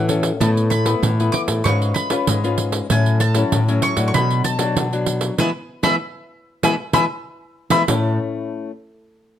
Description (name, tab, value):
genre	samba and choro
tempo	96 BPM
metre	4/4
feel	straight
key	A major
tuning	A4 = 444 Hz
part	mandolin	melody	0.0-8.2 s	E5 to D6	-22 LUFS	left 2 dB	plate reverb
part	nylon-string guitar	accompaniment	0.0-8.7 s	A2 to B4	-22 LUFS	left 4 dB	none
part	nylon-string guitar	bass	0.0-8.2 s	G#2 to E3	-21 LUFS	equal	none
part	pandeiro	percussion	0.1-8.0 s	none	-23 LUFS	right 5 dB	none
room	light reverb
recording	close, detailed microphones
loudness	-16 LUFS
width	side -10 dB against mid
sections	0.0-7.9 A section; 7.9-9.4 B section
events	band accent 5.4-7.9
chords	0.4 Asus2; 1.7 C#7/G#; 2.9 F#m7/A; 4.1 Bm; 5.4 E; 7.9 A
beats	| 0.41 1.03 1.65 2.28 | 2.90 3.52 4.14 4.77 | 5.39 6.01 6.64 7.26 | 7.88 8.51